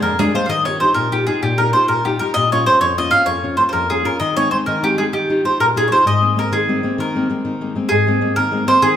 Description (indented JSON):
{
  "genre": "italian folk, Italian serenade",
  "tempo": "130 BPM (dotted quarters)",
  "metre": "6/8",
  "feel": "straight",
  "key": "Ab major",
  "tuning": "A4 = 440 Hz",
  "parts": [
    { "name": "mandolin", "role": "melody", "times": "0.0-9.0 s", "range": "G4 to E#5", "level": "-16 LUFS", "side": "right 1 dB", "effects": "none" },
    { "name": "nylon-string guitar", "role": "accompaniment", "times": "0.0-9.0 s", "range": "E#2 to E#5", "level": "-20 LUFS", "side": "left 3 dB", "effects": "none" }
  ],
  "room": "wet recital hall reverb, RT60 1.6 s",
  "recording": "minimal, uncompressed stereo recording",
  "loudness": "-14 LUFS",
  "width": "side -9 dB against mid",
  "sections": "0.5-7.9 A section; 7.9-9.0 B section",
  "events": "nylon-string guitar fill 0.0-0.5",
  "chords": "0.5 Ebadd9; 2.4 Bbm; 4.2 Ab/Eb; 5.1 Ebadd9; 6.1 Abadd9",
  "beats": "0.03 | 0.50 0.97 | 1.43 1.89 | 2.35 2.81 | 3.27 3.74 | 4.21 4.68 | 5.14 5.60 | 6.06 6.52 | 6.97 7.44 | 7.90 8.36 | 8.82"
}